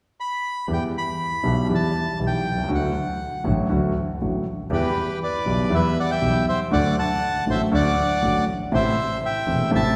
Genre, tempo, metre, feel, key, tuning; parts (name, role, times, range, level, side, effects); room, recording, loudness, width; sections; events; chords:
tango; 120 BPM; 4/4; rubato; E minor; A4 = 440 Hz
bandoneon; melody; 0.2-10.0 s; G4 to B5; -27 LUFS; equal
warm concert grand piano; accompaniment; 0.7-9.9 s; E1 to G4; -26 LUFS; equal
dark double bass; bass; 0.7-9.9 s; E1 to E2; -29 LUFS; equal
wet church reverb, RT60 2.5 s; recorded in a church or concert hall; -23 LUFS; mono
0.7-4.7 A section; 4.7-10.0 B section
0.0 N.C.; 0.7 Em; 2.7 D; 4.7 Em; 6.7 D; 8.7 Am